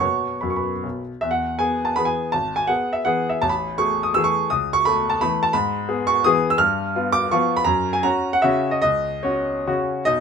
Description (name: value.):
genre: classical, romantic triple-time dance for piano with dotted rhythms.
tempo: 134-187 BPM.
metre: 3/4.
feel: rubato.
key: E major.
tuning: A4 = 440 Hz.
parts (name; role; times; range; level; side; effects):
clear grand piano; solo; 0.0-10.2 s; G#1 to F6; -18 LUFS; equal; none.
room: light reverb.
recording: minimal, uncompressed stereo recording.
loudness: -18 LUFS.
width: side -6 dB against mid.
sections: 0.0-1.2 A section; 1.2-10.1 B section.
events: none.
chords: 0.0 B5; 1.2 E; 2.3 E/G#; 3.4 A5; 4.5 A/C#; 5.5 E/G#; 6.6 G7; 7.6 F#5.